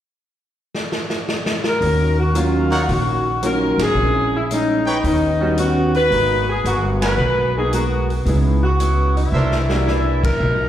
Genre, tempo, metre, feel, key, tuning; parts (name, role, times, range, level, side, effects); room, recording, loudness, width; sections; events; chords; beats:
jazz, big band swing; 112 BPM; 4/4; swing 68% on 8ths; Eb minor; A4 = 440 Hz
swinging big-band drum kit; drums; 0.7-10.3 s; hi-hat, kick drum, ride cymbal, snare drum; -25 LUFS; equal
mellow saxophone section; melody; 1.7-10.7 s; Eb4 to Cb5; -19 LUFS; left 1 dB; slapback echo
picked old ladder-braced acoustic guitar; accompaniment; 1.8-10.7 s; Bb2 to Bb4; -24 LUFS; left 1 dB; slapback echo
upright bass; bass; 1.8-10.7 s; G1 to Eb2; -20 LUFS; equal
clear baby grand piano; accompaniment; 2.3-9.9 s; Gb3 to F#4; -26 LUFS; right 5 dB
clear trumpet section; stabs; 2.7-9.6 s; D4 to Ab5; -25 LUFS; right 1 dB; slapback echo
light reverb, studio reverb; live gig heard through the venue's PA, recital hall reverb; -16 LUFS; side -11 dB against mid
0.0-1.8 A section; 1.8-10.7 B section
drum fill 0.7-1.8, 9.3-9.9; band accent 3.7, 6.9, 10.1
0.0 N.C.; 1.8 Ebm7; 4.0 Bbm7b5; 5.0 Eb7alt; 6.1 Abm9; 8.3 Dbm7; 9.3 C9
0.21 0.74 1.28 | 1.82 2.35 2.89 3.43 | 3.96 4.50 5.04 5.57 | 6.11 6.65 7.18 7.72 | 8.26 8.79 9.33 9.86 | 10.40